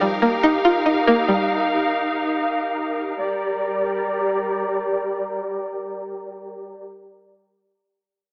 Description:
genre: hip hop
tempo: free time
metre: none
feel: none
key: G minor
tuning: A4 = 440 Hz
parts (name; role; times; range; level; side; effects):
- string-like resonator pluck; accompaniment; 0.0-2.3 s; F3 to F4; -20 LUFS; equal; chorus
- clear symphonic string section; sustained chords; 0.0-6.8 s; G3 to F5; -24 LUFS; equal; none
room: moderate lush hall reverb, RT60 1.9 s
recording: low-pass filter, small speaker sound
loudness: -22 LUFS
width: mono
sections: 0.0-3.2 A section; 3.2-6.6 B section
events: none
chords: 0.0 Ebadd9; 3.2 Gm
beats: free time

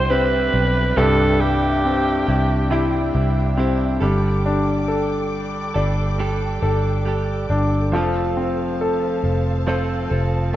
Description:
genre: pop ballad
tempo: 69 BPM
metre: 4/4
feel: straight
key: C major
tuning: A4 = 441 Hz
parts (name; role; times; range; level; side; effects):
- growling alto saxophone; melody; 0.0-3.1 s; G4 to C5; -21 LUFS; right 2 dB; none
- clear concert grand piano; accompaniment; 0.0-10.6 s; G2 to D5; -22 LUFS; left 2 dB; none
- dark studio string section; sustained chords; 0.0-10.6 s; G4 to D6; -32 LUFS; equal; none
- direct-recorded clean electric guitar; arpeggios; 0.0-10.6 s; G2 to A4; -27 LUFS; right 5 dB; spring reverb
- vintage muted fingered electric bass; bass; 0.0-10.6 s; F1 to C2; -21 LUFS; equal; none
room: moderate plate reverb, RT60 2.8 s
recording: rough home demo mix, nothing above 7.8 kHz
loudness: -17 LUFS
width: side -13 dB against mid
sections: 0.0-10.6 A section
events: grand piano fill 10.1-10.6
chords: 0.0 Cadd9; 4.0 Gsus2; 7.9 F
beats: 0.10 | 0.97 1.84 2.71 3.58 | 4.45 5.32 6.19 7.06 | 7.93 8.80 9.67 10.54

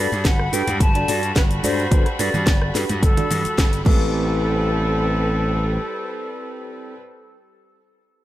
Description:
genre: nu-disco, nu disco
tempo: 108 BPM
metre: 4/4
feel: straight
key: A dorian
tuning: A4 = 436 Hz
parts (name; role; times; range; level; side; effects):
- hollow concert flute; melody; 0.0-7.0 s; A4 to A5; -26 LUFS; equal; digital delay
- mellow tine electric piano; accompaniment; 0.0-7.0 s; C4 to D5; -28 LUFS; equal; medium stereo tremolo, digital delay
- warm chamber violin section; sustained chords; 0.0-7.0 s; G3 to B5; -29 LUFS; equal; vintage 12-bit sampler grit, sidechain pumping
- gritty slap bass; bass; 0.0-5.8 s; G1 to G2; -23 LUFS; equal; overdrive, tube saturation
- house drum kit; drums; 0.1-4.0 s; crash cymbal, hi-hat, rim click, shaker, snare drum; -26 LUFS; equal; none
- electronic kick drum; drums; 0.2-4.0 s; none; -17 LUFS; equal; none
- congas; percussion; 0.7-4.0 s; none; -29 LUFS; right 2 dB; none
room: little or no reverb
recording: none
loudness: -17 LUFS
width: side -14 dB against mid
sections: 0.0-4.1 A section; 4.1-6.4 B section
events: drop 0.0-4.1; band accent 3.6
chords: 0.0 Gmaj9; 3.9 Am9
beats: 0.25 0.81 1.36 | 1.92 2.47 3.03 3.58 | 4.14 4.70 5.25 5.81

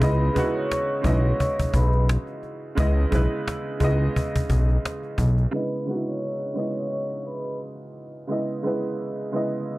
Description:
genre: hip hop, boom-bap hip-hop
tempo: 87 BPM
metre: 4/4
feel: swing 54% on 16ths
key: C# minor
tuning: A4 = 439 Hz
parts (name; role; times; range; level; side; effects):
- vibraphone with soft mallets; melody; 0.0-7.6 s; B4 to C#6; -29 LUFS; equal; high-pass filter, low-pass filter, tape echo
- warm upright piano; accompaniment; 0.0-9.8 s; C#3 to D#5; -27 LUFS; right 1 dB; cassette tape, high-pass filter, low-pass filter
- fat analog bass; bass; 0.0-5.5 s; B1 to C#2; -20 LUFS; equal; none
- cajon; drums; 0.0-5.5 s; none; -26 LUFS; equal; none
room: little or no reverb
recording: dark, warm production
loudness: -22 LUFS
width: side -19 dB against mid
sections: 0.0-5.5 A section; 5.5-9.8 B section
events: filter sweep 5.5-9.8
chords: 0.0 C#m7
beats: | 0.02 0.71 1.40 2.09 | 2.78 3.47 4.16 4.84 | 5.54 6.22 6.91 7.60 | 8.29 8.98 9.67

